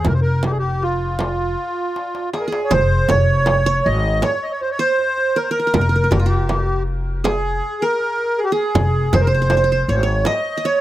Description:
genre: Arabic maqam ensemble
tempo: 80 BPM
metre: 4/4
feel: straight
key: F maqam bayati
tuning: A4 = 444 Hz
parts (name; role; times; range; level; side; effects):
- accordion; melody; 0.0-10.8 s; F4 to Eb5; -19 LUFS; right 1 dB; light tremolo tuning
- upright bass; bass; 0.0-10.2 s; F1 to Ab1; -20 LUFS; left 1 dB; none
- frame drum; percussion; 0.0-10.4 s; none; -22 LUFS; right 4 dB; none
- darbuka; percussion; 0.1-10.7 s; none; -23 LUFS; left 2 dB; none
- qanun; second line; 2.3-10.8 s; F4 to Eb5; -25 LUFS; right 3 dB; none
room: light reverb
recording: none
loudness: -16 LUFS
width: side -14 dB against mid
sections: 0.0-2.7 A section; 2.7-10.8 B section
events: drum fill 2.0-2.7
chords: none

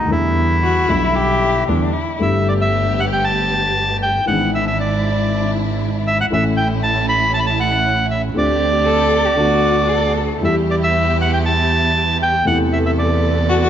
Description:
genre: tango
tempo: 117 BPM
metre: 4/4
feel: rubato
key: G major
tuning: A4 = 440 Hz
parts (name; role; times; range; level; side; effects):
- bandoneon; melody; 0.0-13.7 s; D#4 to B5; -18 LUFS; right 1 dB; none
- dark concert grand piano; accompaniment; 0.0-13.7 s; G1 to A4; -21 LUFS; left 2 dB; none
- rich double bass; bass; 0.0-13.7 s; G1 to E2; -21 LUFS; right 2 dB; none
- warm cello; second line; 0.6-2.2, 8.9-10.3, 13.5-13.7 s; D4 to A4; -20 LUFS; left 4 dB; none
- warm symphonic string section; stabs; 2.2-13.7 s; G#3 to A4; -25 LUFS; right 2 dB; none
room: moderate concert hall reverb, RT60 1.9 s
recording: nothing above 7.7 kHz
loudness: -14 LUFS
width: side -9 dB against mid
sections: 0.0-2.2 A section; 2.2-13.7 B section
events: none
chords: 0.1 Em7; 2.2 Gadd9; 4.3 E7/G#; 6.3 A; 8.3 D7sus4; 9.4 D6; 10.4 Em; 12.5 Amadd9/E

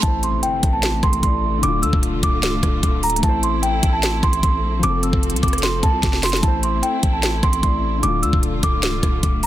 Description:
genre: hip hop, trap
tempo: 150 BPM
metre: 4/4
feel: half-time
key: A minor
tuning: A4 = 440 Hz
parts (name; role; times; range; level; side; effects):
- celesta; melody; 0.0-9.5 s; G5 to E6; -22 LUFS; right 2 dB; ping-pong delay
- dark baby grand piano; accompaniment; 0.0-9.5 s; D3 to D5; -27 LUFS; left 6 dB; none
- clear symphonic string section; sustained chords; 0.0-9.5 s; C3 to A4; -28 LUFS; right 1 dB; none
- distorted 808-style bass; bass; 0.0-9.5 s; C1 to D2; -23 LUFS; equal; distortion
- trap drum kit; drums; 0.0-9.5 s; hi-hat, kick drum, rim click, snare drum; -19 LUFS; equal; none
- reverse cymbal and impact; sound effects; 0.0-1.6 s; none; -31 LUFS; right 2 dB; none
room: little or no reverb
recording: dense, heavily limited modern master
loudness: -16 LUFS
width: side -13 dB against mid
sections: 0.0-9.5 A section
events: impact 0.0-1.6; drum fill 6.0-6.4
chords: 0.0 Am; 1.6 Dm; 3.2 Am; 4.8 F; 6.4 Am; 8.0 Dm

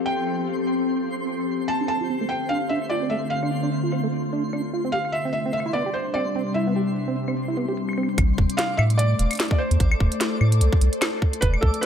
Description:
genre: IDM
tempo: 148 BPM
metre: 4/4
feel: swing 56% on 16ths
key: A minor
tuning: A4 = 440 Hz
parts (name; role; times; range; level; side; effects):
- glassy FM pad; sustained chords; 0.0-11.9 s; C3 to C5; -26 LUFS; left 2 dB; ensemble chorus, built-in reverb
- glitchy drum kit; drums; 0.0-11.9 s; claves, hi-hat, snare drum; -27 LUFS; equal; overdrive, low-pass filter on hats, low-pass filter on perc, low-pass filter on snare, low-pass filter on room
- twinkling granular texture; texture; 0.0-11.9 s; C4 to D6; -34 LUFS; right 1 dB; built-in reverb
- felt-muted upright piano; melody; 0.1-11.9 s; A4 to A5; -28 LUFS; equal; vintage 12-bit sampler grit, ping-pong delay
- deep acid bass; arpeggios; 1.8-8.1 s; A3 to G4; -28 LUFS; right 4 dB; tape echo
- round analog bass; bass; 8.2-11.7 s; E1 to A2; -19 LUFS; equal; none
- electronic kick drum; drums; 8.2-11.7 s; none; -21 LUFS; equal; overdrive
room: light reverb, digital ambience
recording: none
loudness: -21 LUFS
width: side -8 dB against mid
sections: 0.0-8.2 A section; 8.2-11.9 B section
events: none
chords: 0.0 Fadd9; 1.7 Dm7; 4.9 C; 8.2 Am

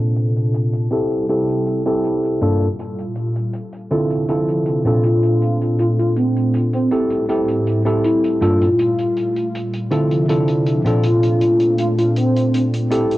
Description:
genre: vaporwave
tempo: 80 BPM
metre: 4/4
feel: straight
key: unclear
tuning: A4 = 435 Hz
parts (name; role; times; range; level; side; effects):
- tine electric piano; accompaniment; 0.0-13.2 s; G2 to A4; -17 LUFS; equal; wide subtle chorus, vintage 12-bit sampler grit, tape echo
- lush unison pad; sustained chords; 0.0-13.2 s; A2 to E5; -25 LUFS; equal; chorus
- hi-hat; drums; 0.2-13.2 s; none; -39 LUFS; equal; none
- warm velvety synth lead; melody; 5.0-12.6 s; C4 to F4; -19 LUFS; equal; chorus, cassette tape, tape echo
room: moderate studio reverb, RT60 0.6 s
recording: home recording on cassette, low-pass filter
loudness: -15 LUFS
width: side -16 dB against mid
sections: 0.0-13.2 A section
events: filter sweep on analog synth pad 0.0-13.2; filter sweep 0.0-13.2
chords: 0.0 Bbmaj9; 0.9 Am7; 2.4 Gm9; 3.9 Dm9; 5.0 Bbmaj9; 6.9 Am7; 8.4 Gm9; 9.9 Dm9; 11.0 Bbmaj9

